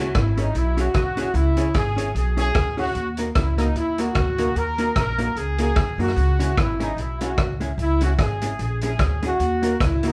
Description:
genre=ska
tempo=149 BPM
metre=4/4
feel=swing 56% on 8ths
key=C# dorian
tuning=A4 = 440 Hz
part: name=warm horn section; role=melody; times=0.0-10.1 s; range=D#4 to A#4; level=-27 LUFS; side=equal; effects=none
part: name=hollow-body jazz guitar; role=accompaniment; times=0.0-10.1 s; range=G#3 to C#5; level=-30 LUFS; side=equal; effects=none
part: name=upright bass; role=bass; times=0.0-10.1 s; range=G#1 to F#2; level=-26 LUFS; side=equal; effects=none
part: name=street-band drum kit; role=drums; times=0.1-10.1 s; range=hi-hat, kick drum, rim click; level=-27 LUFS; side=equal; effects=none
room=moderate studio reverb, RT60 0.7 s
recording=band playing live in one room, cassette tape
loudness=-22 LUFS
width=mono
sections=0.0-10.1 A section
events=none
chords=0.0 C#m; 3.0 D#m; 6.2 C#m; 9.4 D#m

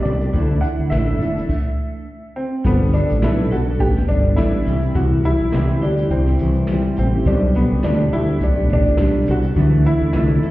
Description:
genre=acoustic pop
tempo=104 BPM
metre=4/4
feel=swing 55% on 16ths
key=G major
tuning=A4 = 440 Hz
part: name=clear upright piano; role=melody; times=0.0-10.5 s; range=B3 to F#5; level=-23 LUFS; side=equal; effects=none
part: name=nylon-string guitar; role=accompaniment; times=0.0-10.5 s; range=B2 to A4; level=-21 LUFS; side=equal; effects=double-tracked left and right
part: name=twelve-string electric guitar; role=arpeggios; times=0.0-10.5 s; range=E3 to A4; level=-30 LUFS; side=right 4 dB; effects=phaser, tape echo
part: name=woody fretless electric bass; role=bass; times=0.1-10.5 s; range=E1 to D2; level=-19 LUFS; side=equal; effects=wide subtle chorus
part: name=jazz brush drum kit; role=drums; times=0.1-10.5 s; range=crash cymbal, kick drum, shaker, snare drum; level=-22 LUFS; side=equal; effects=none
room=small room ambience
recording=heard muffled through a wall, stone room reverb, EQ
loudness=-15 LUFS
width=side -17 dB against mid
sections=0.0-2.6 A section; 2.6-10.5 B section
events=stop 1.5-2.6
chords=0.3 Dsus2; 2.6 Gadd9; 4.7 C; 7.3 Gadd9/B; 9.6 Dsus2

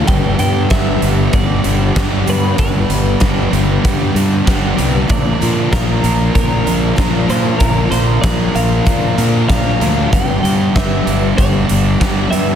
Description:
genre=rock, shoegaze and dream pop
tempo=96 BPM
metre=4/4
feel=straight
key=unclear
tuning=A4 = 436 Hz
part: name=twelve-string electric guitar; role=melody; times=0.0-12.6 s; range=Bb4 to G5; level=-23 LUFS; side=equal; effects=slapback echo
part: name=picked twelve-string acoustic guitar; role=arpeggios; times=0.0-12.6 s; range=F3 to G4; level=-26 LUFS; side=left 9 dB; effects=analog chorus, slapback echo
part: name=crunchy overdriven guitar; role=riff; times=0.0-12.6 s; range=G2 to Bb4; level=-19 LUFS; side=right 9 dB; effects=reverse reverb
part: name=thick fuzz guitar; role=riff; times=0.0-12.6 s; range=G2 to Bb3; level=-20 LUFS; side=left 9 dB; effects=distortion, wide subtle chorus
part: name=fuzz fingered electric bass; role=bass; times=0.1-12.6 s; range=G1 to Bb2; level=-17 LUFS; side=equal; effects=overdrive
part: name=big rock drum kit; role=drums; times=0.1-12.5 s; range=hi-hat, kick drum, snare drum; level=-17 LUFS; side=equal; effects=none
room=little or no reverb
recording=dense, heavily limited modern master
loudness=-12 LUFS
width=side -9 dB against mid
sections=0.0-12.6 A section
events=none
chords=0.1 G; 5.1 Bb; 10.1 G

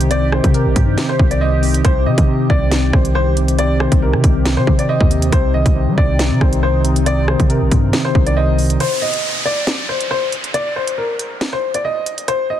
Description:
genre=hip hop, drill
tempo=138 BPM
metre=4/4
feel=half-time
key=C minor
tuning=A4 = 440 Hz
part: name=tine electric piano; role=accompaniment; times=0.0-8.8 s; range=C3 to C5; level=-19 LUFS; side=left 1 dB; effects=medium stereo tremolo
part: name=sweeping resonant pad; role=sustained chords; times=0.0-8.8 s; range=C3 to G4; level=-26 LUFS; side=equal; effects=chorus
part: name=hard-hitting 808-style bass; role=bass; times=0.0-8.8 s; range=Bb1 to G3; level=-17 LUFS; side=equal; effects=none
part: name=drill drum kit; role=drums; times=0.0-12.4 s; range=hi-hat, kick drum, rim click, snare drum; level=-17 LUFS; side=equal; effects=vintage 12-bit sampler grit
part: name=dark baby grand piano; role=melody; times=0.1-12.6 s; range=Bb4 to Eb5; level=-20 LUFS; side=left 2 dB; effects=none
part: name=downlifter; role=sound effects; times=8.8-12.3 s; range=none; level=-24 LUFS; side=right 1 dB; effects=none
room=digital ambience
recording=dense, heavily limited modern master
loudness=-13 LUFS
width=side -11 dB against mid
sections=0.0-8.8 A section; 8.8-12.6 B section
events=break 8.8-12.6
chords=0.0 Cm; 8.8 N.C.

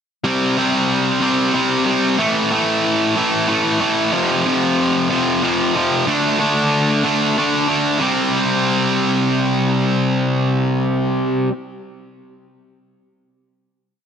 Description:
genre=rock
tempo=62 BPM (dotted quarters)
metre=6/8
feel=straight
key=unclear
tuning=A4 = 438 Hz
part: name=distorted electric guitar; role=solo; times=0.2-11.5 s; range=F2 to D4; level=-15 LUFS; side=equal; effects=overdrive
room=moderate plate reverb, RT60 2.7 s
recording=none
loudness=-15 LUFS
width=side -7 dB against mid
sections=0.2-8.0 verse; 8.0-11.8 final chord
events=none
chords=0.2 C5; 2.2 A5; 4.1 F5; 6.1 D5; 8.0 C5

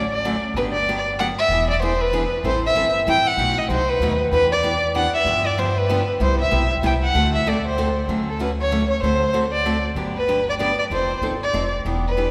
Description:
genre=acoustic string swing (jazz manouche)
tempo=191 BPM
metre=3/4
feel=swing 59% on 8ths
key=G major, D major from 8.1 s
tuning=A4 = 439 Hz
part: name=picked steel-string acoustic guitar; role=accompaniment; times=0.0-12.3 s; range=B2 to A4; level=-28 LUFS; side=equal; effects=none
part: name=upright bass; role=bass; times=0.0-12.3 s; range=E1 to G2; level=-28 LUFS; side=equal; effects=none
part: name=warm violin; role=melody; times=0.1-12.3 s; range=A4 to G5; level=-22 LUFS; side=equal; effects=none
room=wet church reverb, RT60 3.7 s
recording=recorded in a church or concert hall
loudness=-20 LUFS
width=mono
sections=0.5-8.1 A section; 8.1-12.3 B section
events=none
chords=0.0 Dmaj7; 0.5 Gmaj7; 1.5 E7; 2.4 Am7; 3.4 B7; 4.3 Em7; 5.3 G7; 6.2 Cmaj7; 7.1 D7; 8.1 Dmaj7; 9.0 D7; 10.0 Gmaj7; 10.9 F7

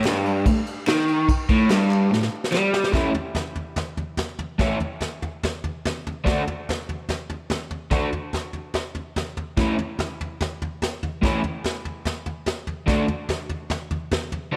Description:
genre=garage rock duo or trio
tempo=145 BPM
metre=4/4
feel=straight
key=A mixolydian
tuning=A4 = 440 Hz
part: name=crunchy overdriven guitar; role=riff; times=0.0-14.6 s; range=G2 to F#4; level=-25 LUFS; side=equal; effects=spring reverb
part: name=vintage brush drum kit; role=drums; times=0.0-14.4 s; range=kick drum, ride cymbal, snare drum, toms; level=-28 LUFS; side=equal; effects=none
part: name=group handclap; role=percussion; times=0.0-2.6 s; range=none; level=-39 LUFS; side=equal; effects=none
room=light reverb, small room ambience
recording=none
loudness=-25 LUFS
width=mono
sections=0.0-2.9 A section; 2.9-14.6 B section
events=drum fill 2.1-2.9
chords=0.0 Gsus2; 2.9 A; 6.3 D; 9.6 A; 12.9 D

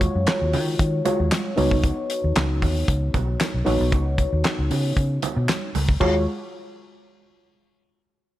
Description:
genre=early-eighties boogie funk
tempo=115 BPM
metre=4/4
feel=straight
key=Eb minor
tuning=A4 = 439 Hz
part: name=mellow FM electric piano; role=accompaniment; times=0.0-6.2 s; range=Ab3 to Db5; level=-25 LUFS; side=left 1 dB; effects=chorus
part: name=vintage muted fingered electric bass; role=bass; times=0.0-6.3 s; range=Bb1 to Eb3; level=-23 LUFS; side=equal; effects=none
part: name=damped 70s drum kit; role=drums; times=0.0-6.1 s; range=crash cymbal, handclaps, hi-hat, kick drum, snare drum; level=-24 LUFS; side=equal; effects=none
part: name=congas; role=percussion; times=0.0-6.3 s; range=none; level=-31 LUFS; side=right 10 dB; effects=none
room=small room ambience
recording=none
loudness=-20 LUFS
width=side -14 dB against mid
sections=0.0-6.0 A section; 6.0-8.1 B section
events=none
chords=0.0 Ebm11; 1.6 Db9sus4; 6.0 Ebm11

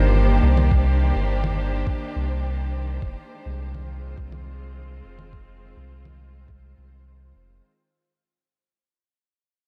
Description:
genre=ambient dub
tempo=104 BPM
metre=4/4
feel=straight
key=F dorian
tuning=A4 = 443 Hz
part: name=dark studio string section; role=sustained chords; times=0.0-7.6 s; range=Eb3 to C5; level=-30 LUFS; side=equal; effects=vintage 12-bit sampler grit
part: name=warm sub bass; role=bass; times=0.0-7.6 s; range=F1 to C2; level=-24 LUFS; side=equal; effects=tube saturation
part: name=congas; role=drums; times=0.6-6.2 s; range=none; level=-34 LUFS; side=equal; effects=none
part: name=electronic kick drum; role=drums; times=0.7-6.6 s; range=none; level=-28 LUFS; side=equal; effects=studio reverb
room=little or no reverb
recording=none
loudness=-22 LUFS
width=mono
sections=0.0-7.6 A section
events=fade-out 0.0-7.6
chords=0.0 Cm9; 3.0 Fm7

